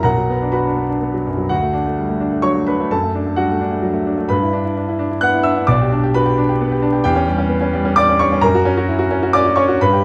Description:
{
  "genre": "classical, virtuoso piano study",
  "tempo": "130 BPM",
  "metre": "3/4",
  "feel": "rubato",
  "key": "D major",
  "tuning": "A4 = 440 Hz",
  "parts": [
    { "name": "clear grand piano", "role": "solo", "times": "0.0-10.0 s", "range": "B1 to F#6", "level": "-17 LUFS", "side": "equal", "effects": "none" }
  ],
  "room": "light reverb",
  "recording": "vinyl crackle",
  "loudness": "-17 LUFS",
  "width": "mono",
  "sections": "0.0-1.5 A section; 1.5-10.0 B section",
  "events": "none",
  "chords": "0.1 Bm; 1.5 D; 2.9 D/F#; 4.3 G6; 5.7 G/B; 7.1 C#dim/E; 8.4 F#"
}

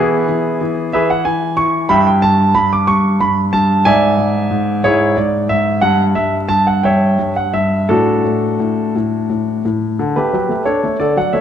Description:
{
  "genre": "classical-period piano sonatina",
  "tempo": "56-62 BPM (dotted quarters)",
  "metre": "6/8",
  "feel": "rubato",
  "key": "unclear",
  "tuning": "A4 = 438 Hz",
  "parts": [
    { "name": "clear concert grand piano", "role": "solo", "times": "0.0-11.4 s", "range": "G2 to D6", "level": "-12 LUFS", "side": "equal", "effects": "none" }
  ],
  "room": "wet recital hall reverb, RT60 1.7 s",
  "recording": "dark, warm production, lossy compression artefacts",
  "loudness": "-12 LUFS",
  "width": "side -9 dB against mid",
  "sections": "0.0-10.0 A section; 10.0-11.4 B section",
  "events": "none",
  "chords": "0.0 E; 1.9 Em/G (rootless); 3.9 E7/G#; 5.8 Em69/G; 7.9 D/A; 10.0 D"
}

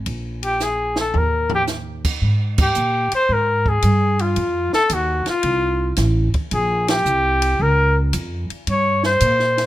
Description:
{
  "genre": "jazz, small-group swing and bop",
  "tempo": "112 BPM",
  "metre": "4/4",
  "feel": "swing 68% on 8ths",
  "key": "Ab major",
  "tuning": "A4 = 440 Hz",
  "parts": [
    { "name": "upright bass", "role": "bass", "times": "0.0-9.7 s", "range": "A1 to Bb2", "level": "-20 LUFS", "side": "right 1 dB", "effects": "none" },
    { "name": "compact cocktail drum kit", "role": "drums", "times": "0.1-9.7 s", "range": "crash cymbal, hi-hat, kick drum, ride cymbal, snare drum, toms", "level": "-24 LUFS", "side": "right 1 dB", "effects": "none" },
    { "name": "warm trumpet", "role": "melody", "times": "0.4-9.7 s", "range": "F4 to Db5", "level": "-18 LUFS", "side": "left 1 dB", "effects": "none" }
  ],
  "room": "little or no reverb",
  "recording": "minimal, uncompressed stereo recording",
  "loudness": "-16 LUFS",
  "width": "side -14 dB against mid",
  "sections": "0.0-2.2 A section; 2.2-9.7 B section",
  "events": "drum fill 0.6-1.7; band accent 2.5, 6.8",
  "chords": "0.1 N.C.; 1.1 Eb5; 2.2 Absus2; 4.4 F7; 6.5 Bbmadd9; 8.7 Gmadd11"
}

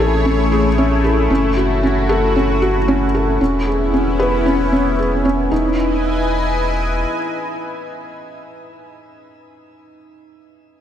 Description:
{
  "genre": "piano and strings electronica",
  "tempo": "114 BPM",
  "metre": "4/4",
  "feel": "straight",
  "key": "E major",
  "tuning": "A4 = 442 Hz",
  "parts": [
    { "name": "lush unison pad", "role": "sustained chords", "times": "0.0-8.5 s", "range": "A3 to G#5", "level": "-20 LUFS", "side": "left 1 dB", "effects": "chorus, phaser, shimmer reverb" },
    { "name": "felt-muted upright piano", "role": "riff", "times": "0.0-10.8 s", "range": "C#4 to B4", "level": "-18 LUFS", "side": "equal", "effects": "shimmer reverb, digital delay" },
    { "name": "round analog bass", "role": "bass", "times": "0.0-7.1 s", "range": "E1 to A1", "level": "-20 LUFS", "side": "equal", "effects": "none" }
  ],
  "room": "moderate huge ambient reverb, RT60 4.7 s",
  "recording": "none",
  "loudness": "-14 LUFS",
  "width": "side -10 dB against mid",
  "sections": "0.0-5.5 A section; 5.5-9.7 B section",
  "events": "none",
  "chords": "0.0 Amaj7; 1.3 F#m7; 3.4 C#m7/E; 5.5 Emaj7"
}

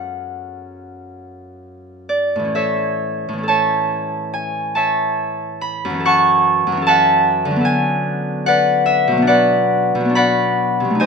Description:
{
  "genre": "classical, solo harp piece",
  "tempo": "61-76 BPM",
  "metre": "4/4",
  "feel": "rubato",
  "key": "A major",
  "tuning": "A4 = 436 Hz",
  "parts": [
    { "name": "Celtic harp", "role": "solo", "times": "0.0-11.1 s", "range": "F#2 to C#6", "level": "-15 LUFS", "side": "equal", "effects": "none" }
  ],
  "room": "moderate recital hall reverb, RT60 1.4 s",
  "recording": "close, detailed microphones",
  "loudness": "-14 LUFS",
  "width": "side -5 dB against mid",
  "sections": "0.0-2.5 A section; 2.5-11.1 B section",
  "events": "none",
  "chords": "0.0 F#m; 2.5 A; 6.0 F#m7; 7.7 Bm7/D; 9.3 Bm"
}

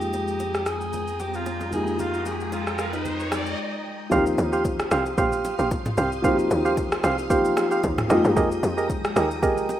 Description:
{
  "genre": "amapiano",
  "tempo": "113 BPM",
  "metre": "4/4",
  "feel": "swing 55% on 16ths",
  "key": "Eb major",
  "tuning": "A4 = 440 Hz",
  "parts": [
    { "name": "clear alto saxophone", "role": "melody", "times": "0.0-3.5 s", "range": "Eb4 to Ab4", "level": "-30 LUFS", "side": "equal", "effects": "tape echo, plate reverb" },
    { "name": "dark baby grand piano", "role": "accompaniment", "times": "0.0-9.8 s", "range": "F3 to G5", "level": "-26 LUFS", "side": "left 1 dB", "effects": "plate reverb" },
    { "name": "ensemble organ-string", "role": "sustained chords", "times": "0.0-9.8 s", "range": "Ab3 to Eb6", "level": "-34 LUFS", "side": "left 1 dB", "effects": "ensemble chorus, sidechain pumping, plate reverb" },
    { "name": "punchy sub bass", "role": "bass", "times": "0.0-3.5 s", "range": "F2", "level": "-34 LUFS", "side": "equal", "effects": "none" },
    { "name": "smooth R&B drum kit", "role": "drums", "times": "0.0-9.8 s", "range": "kick drum, rim click, shaker, toms", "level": "-28 LUFS", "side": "equal", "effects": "none" },
    { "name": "riser", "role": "sound effects", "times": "1.1-3.6 s", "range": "none", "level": "-34 LUFS", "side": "equal", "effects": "none" },
    { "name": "bongos and congas", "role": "percussion", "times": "0.1-9.8 s", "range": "none", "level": "-37 LUFS", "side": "right 2 dB", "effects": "none" },
    { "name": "percussive organ stab", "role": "stabs", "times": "4.1-9.8 s", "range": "G4 to F5", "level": "-24 LUFS", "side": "right 3 dB", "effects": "chorus, tape echo, plate reverb" },
    { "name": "tight log drum bass", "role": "bass", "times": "4.1-9.8 s", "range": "Bb1 to G2", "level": "-26 LUFS", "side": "equal", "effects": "none" }
  ],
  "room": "moderate studio reverb, RT60 0.6 s",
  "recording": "rough home demo mix",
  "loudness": "-21 LUFS",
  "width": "side -12 dB against mid",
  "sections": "0.0-4.1 A section; 4.1-9.8 B section",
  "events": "riser 1.1-4.1; break 3.6-4.1; drop 4.1-9.8",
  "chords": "0.0 Fm11; 4.1 Eb69; 8.1 Fm11"
}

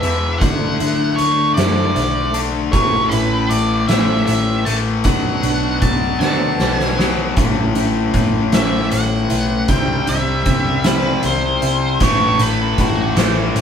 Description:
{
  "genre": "quiet-loud alternative rock",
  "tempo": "52 BPM (dotted quarters)",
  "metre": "6/8",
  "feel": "straight",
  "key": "unclear",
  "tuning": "A4 = 444 Hz",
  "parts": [
    { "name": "octave-fuzz lead guitar", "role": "melody", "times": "0.0-13.2 s", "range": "F#4 to A5", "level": "-21 LUFS", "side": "right 2 dB", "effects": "distortion" },
    { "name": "picked steel-string acoustic guitar", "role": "arpeggios", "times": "0.0-12.0 s", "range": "A2 to F#4", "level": "-25 LUFS", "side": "right 7 dB", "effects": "none" },
    { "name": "distorted electric guitar", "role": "riff", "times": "0.0-13.6 s", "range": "E2 to D4", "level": "-20 LUFS", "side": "left 5 dB", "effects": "overdrive" },
    { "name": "hollow-body short-scale picked electric bass", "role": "bass", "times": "0.0-13.6 s", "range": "A1 to F#2", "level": "-22 LUFS", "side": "equal", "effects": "none" },
    { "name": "oversized low-tuned drum kit", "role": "drums", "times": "0.0-13.6 s", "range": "hi-hat, kick drum, snare drum", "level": "-20 LUFS", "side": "equal", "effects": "none" },
    { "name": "crunchy overdriven guitar", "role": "riff", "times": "12.0-13.6 s", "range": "A2 to A3", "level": "-22 LUFS", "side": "right 5 dB", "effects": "none" }
  ],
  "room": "wet studio ambience, RT60 0.5 s",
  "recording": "band playing live in one room",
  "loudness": "-14 LUFS",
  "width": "side -8 dB against mid",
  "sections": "0.0-7.4 A section; 7.4-13.6 B section",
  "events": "drum fill 6.2-7.4; lead electric guitar solo 7.4-13.6",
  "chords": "0.4 Dadd9; 2.7 A; 5.1 Bm7; 7.4 A6; 9.7 C; 12.0 A5"
}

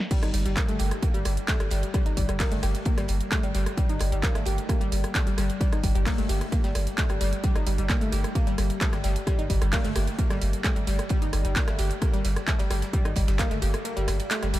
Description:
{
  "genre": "driving peak-time techno",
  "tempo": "131 BPM",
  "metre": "4/4",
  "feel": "straight",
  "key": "G minor",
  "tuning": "A4 = 435 Hz",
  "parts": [
    { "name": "techno drum kit", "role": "drums", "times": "0.0-14.6 s", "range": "crash cymbal, handclaps, hi-hat, rim click, snare drum", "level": "-32 LUFS", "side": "right 1 dB", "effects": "low-pass filter on snare, low-pass filter on hats, low-pass filter on cymbals, low-pass filter on room" },
    { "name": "analog pluck", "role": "riff", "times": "0.1-14.6 s", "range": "G3 to G4", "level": "-30 LUFS", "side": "left 1 dB", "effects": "chorus, phaser, sidechain pumping, tape echo" },
    { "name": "electronic kick drum", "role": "drums", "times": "0.1-13.5 s", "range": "none", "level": "-26 LUFS", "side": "equal", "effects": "none" },
    { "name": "warm soul drum kit", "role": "drums", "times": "0.1-14.6 s", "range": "hi-hat, ride cymbal, snare drum", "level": "-44 LUFS", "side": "right 4 dB", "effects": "none" },
    { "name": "warm sub bass", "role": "bass", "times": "0.2-14.6 s", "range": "G1", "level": "-28 LUFS", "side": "equal", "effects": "overdrive, sidechain pumping, low-pass filter" }
  ],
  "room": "light reverb, studio ambience",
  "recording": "none",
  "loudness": "-23 LUFS",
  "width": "side -15 dB against mid",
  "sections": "0.1-14.6 A section",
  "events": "drop 0.1-14.6; kick drops out 13.8-14.6",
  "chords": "0.1 Gm"
}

